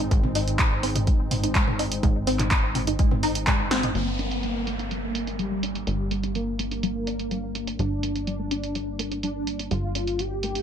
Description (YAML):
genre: melodic techno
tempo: 125 BPM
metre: 4/4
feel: straight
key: G phrygian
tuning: A4 = 438 Hz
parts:
  - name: warm analog pad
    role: sustained chords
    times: 0.0-10.6 s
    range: G3 to Eb4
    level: -36 LUFS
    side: left 1 dB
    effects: wide subtle chorus, sidechain pumping
  - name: wide unison pluck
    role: arpeggios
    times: 0.0-10.6 s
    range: G3 to Eb4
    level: -30 LUFS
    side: equal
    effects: ensemble chorus, sidechain pumping, ping-pong delay
  - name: plucky analog bass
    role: bass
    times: 0.0-10.6 s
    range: G1 to Ab1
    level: -31 LUFS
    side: equal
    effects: sidechain pumping
  - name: punchy analog drum machine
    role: drums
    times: 0.0-10.6 s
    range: handclaps, hi-hat, snare drum, toms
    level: -28 LUFS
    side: right 1 dB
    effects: low-pass filter on hats, low-pass filter on toms, low-pass filter on snare, low-pass filter on room, gated reverb
  - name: electronic kick drum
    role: drums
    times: 0.1-3.6 s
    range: none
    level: -22 LUFS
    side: equal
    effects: none
  - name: wide unison lead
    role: melody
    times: 4.0-10.6 s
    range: G3 to G4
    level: -30 LUFS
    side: right 1 dB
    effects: ensemble chorus, sidechain pumping, digital delay
  - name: downlifter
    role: sound effects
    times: 4.0-7.8 s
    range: none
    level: -34 LUFS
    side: equal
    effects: none
room: light reverb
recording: bright 1980s-style digital production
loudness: -23 LUFS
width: side -8 dB against mid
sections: 0.0-4.0 A section; 4.0-10.6 B section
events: filter sweep on synth arpeggio sound 0.0-4.0; drum fill 3.7; band accent 3.7; filter sweep on analog synth lead 4.0-10.6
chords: 0.0 Ab; 4.0 Gm